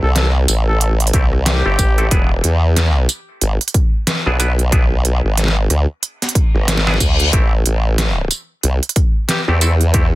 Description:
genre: glitch hop.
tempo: 92 BPM.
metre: 4/4.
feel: swing 59% on 16ths.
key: unclear.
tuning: A4 = 440 Hz.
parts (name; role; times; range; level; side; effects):
mellow trumpet; melody; 0.0-2.2, 9.3-9.6 s; G4 to A4; -25 LUFS; left 1 dB; digital delay.
formant-sweep wobble bass; bass; 0.0-10.2 s; E1 to E2; -15 LUFS; equal; chorus, overdrive.
dubstep drum kit; drums; 0.2-10.1 s; hi-hat, rim click, snare drum, tambourine; -18 LUFS; right 1 dB; none.
auto-wah clav; stabs; 1.1-10.1 s; A3 to B4; -24 LUFS; equal; sidechain pumping, digital delay.
electronic kick drum; drums; 1.1-10.1 s; none; -14 LUFS; equal; none.
reverse cymbal; sound effects; 6.6-7.3 s; none; -22 LUFS; left 4 dB; none.
room: little or no reverb.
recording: dense, heavily limited modern master.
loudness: -13 LUFS.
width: side -17 dB against mid.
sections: 0.0-10.2 A section.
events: reverse cymbal 6.6-7.3.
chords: 0.0 Am7; 2.1 E7; 7.3 Am7.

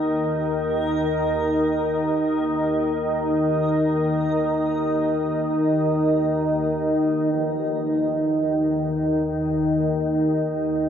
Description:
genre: dark ambient drone.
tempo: free time.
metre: none.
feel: none.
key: unclear.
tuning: A4 = 441 Hz.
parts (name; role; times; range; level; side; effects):
dark analog pad; sustained chords; 0.0-10.9 s; Eb4 to Eb5; -21 LUFS; right 1 dB; chorus.
organ-like drone; drone; 0.0-10.9 s; Eb2 to Eb3; -26 LUFS; left 2 dB; ensemble chorus, built-in reverb.
backwards swelling texture; texture; 0.0-7.3 s; Bb4; -32 LUFS; left 1 dB; built-in reverb, wide subtle chorus.
tam-tam; percussion; 7.3-7.5 s; none; barely audible; none; none.
room: wet cathedral reverb, RT60 7.7 s.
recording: dreamy mix soaked in reverb.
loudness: -20 LUFS.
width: side -8 dB against mid.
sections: 0.0-7.3 A section; 7.3-10.9 A section.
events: none.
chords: 0.0 Eb5.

